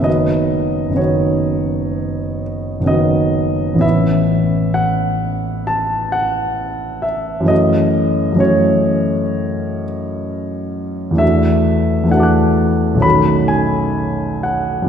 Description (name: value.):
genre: classical, impressionist solo piano.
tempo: 64 BPM.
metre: 4/4.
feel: rubato.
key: A lydian.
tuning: A4 = 440 Hz.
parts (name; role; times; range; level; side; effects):
warm concert grand piano; solo; 0.0-14.9 s; F#1 to F#6; -14 LUFS; equal; none.
room: wet concert hall reverb, RT60 2.4 s.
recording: heard from further back in the room, nothing above 10.7 kHz.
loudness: -14 LUFS.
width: side -8 dB against mid.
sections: 0.0-14.9 A section.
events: none.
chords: 0.1 Badd9/F#; 3.8 Aadd9; 7.5 F#m7; 11.2 E9sus4; 13.0 B9.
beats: | 0.06 1.00 1.96 2.90 | 3.83 4.77 5.70 6.60 | 7.51 8.43 9.37 10.30 | 11.21 12.14 13.04 13.97.